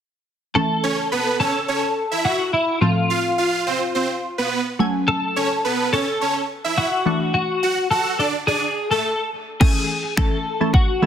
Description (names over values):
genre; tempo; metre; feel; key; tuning
dance-pop; 106 BPM; 4/4; straight; A major; A4 = 440 Hz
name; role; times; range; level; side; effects
glassy wavetable pluck; accompaniment; 0.5-11.1 s; A2 to G#5; -22 LUFS; equal; chorus, sidechain pumping
twelve-string electric guitar; melody; 0.6-11.1 s; E4 to A4; -21 LUFS; left 2 dB; ensemble chorus, tape echo
supersaw chords; melody; 0.8-9.0 s; A3 to F#5; -22 LUFS; right 4 dB; sidechain pumping
pop drum kit; drums; 9.6-10.9 s; crash cymbal, finger snaps, kick drum; -17 LUFS; equal; soft clipping on snare
room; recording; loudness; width
moderate studio reverb, RT60 0.5 s; dense, heavily limited modern master; -18 LUFS; side -9 dB against mid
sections
0.6-9.6 A section; 9.6-11.1 B section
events
none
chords
0.6 A; 2.8 F/A; 4.8 F#madd9; 7.1 Dadd9; 9.6 A